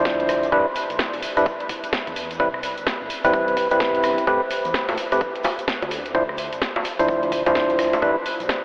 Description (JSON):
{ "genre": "UK garage, two-step garage", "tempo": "128 BPM", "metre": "4/4", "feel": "swing 62% on 16ths", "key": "unclear", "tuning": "A4 = 439 Hz", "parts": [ { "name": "percussive organ stab", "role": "stabs", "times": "0.0-8.2 s", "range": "F3 to C5", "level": "-20 LUFS", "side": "equal", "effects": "chorus, diffuse ambient delay" }, { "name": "dark detuned saw bass", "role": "bass", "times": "0.0-8.5 s", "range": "D1 to A2", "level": "-37 LUFS", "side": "equal", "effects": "none" }, { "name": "electronic kick drum", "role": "drums", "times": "0.1-8.6 s", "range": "none", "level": "-32 LUFS", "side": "equal", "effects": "none" }, { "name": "house drum kit", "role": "drums", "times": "0.1-8.6 s", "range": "bongos, hi-hat, rim click, snare drum", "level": "-26 LUFS", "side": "equal", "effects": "none" }, { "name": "tube shaker", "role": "percussion", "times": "0.1-8.6 s", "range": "none", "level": "-44 LUFS", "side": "equal", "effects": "none" } ], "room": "wet huge ambient reverb, RT60 8.5 s", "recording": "dreamy mix soaked in reverb, telephone sound", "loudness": "-19 LUFS", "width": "side -33 dB against mid", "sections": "0.0-8.6 A section", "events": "none", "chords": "0.0 Dm9; 0.5 Em7; 2.4 Cmaj7; 4.3 Am9; 5.9 Dm9; 8.0 Em7" }